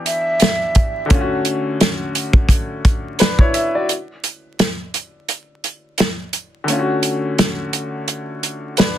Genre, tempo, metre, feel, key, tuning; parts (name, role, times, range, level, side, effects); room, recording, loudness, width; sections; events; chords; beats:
hip hop, boom-bap hip-hop; 86 BPM; 4/4; swing 55% on 16ths; A4 = 443 Hz
bright upright piano; accompaniment; 0.0-9.0 s; D3 to E5; -21 LUFS; left 2 dB; high-pass filter, low-pass filter
breathy mellow silver concert flute; melody; 0.1-1.1 s; E5; -21 LUFS; right 1 dB; high-pass filter, low-pass filter, digital delay
warm soul drum kit; drums; 0.1-9.0 s; hi-hat, kick drum, snare drum; -15 LUFS; equal
little or no reverb; dense, heavily limited modern master, vinyl crackle; -16 LUFS; side -11 dB against mid
0.0-3.9 A section; 3.9-9.0 B section
break 3.9-9.0
0.0 Em7; 1.1 Dmaj7; 3.9 N.C.; 6.7 Dmaj7
0.41 | 1.10 1.80 2.50 3.20 | 3.89 4.59 5.29 5.99 | 6.68 7.38 8.08 8.78